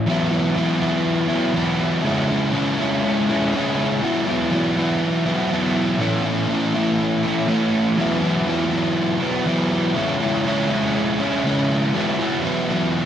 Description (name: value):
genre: rock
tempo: 121 BPM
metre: 4/4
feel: straight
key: E major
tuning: A4 = 443 Hz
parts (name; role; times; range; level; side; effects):
- crunchy overdriven guitar; solo; 0.0-13.1 s; A2 to E4; -18 LUFS; equal; wide subtle chorus, tape echo
room: wet huge ambient reverb, RT60 4.6 s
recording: dreamy mix soaked in reverb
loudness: -18 LUFS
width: side -10 dB against mid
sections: 0.1-13.1 A section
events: none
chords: 0.1 Esus2; 2.0 C#m; 4.0 Esus2; 6.0 A; 8.0 Esus2; 10.0 C#m; 11.9 Esus2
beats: | 0.07 0.56 1.06 1.55 | 2.04 2.54 3.03 3.53 | 4.02 4.51 5.01 5.50 | 6.00 6.49 6.99 7.48 | 7.98 8.47 8.97 9.46 | 9.96 10.45 10.95 11.45 | 11.94 12.44 12.93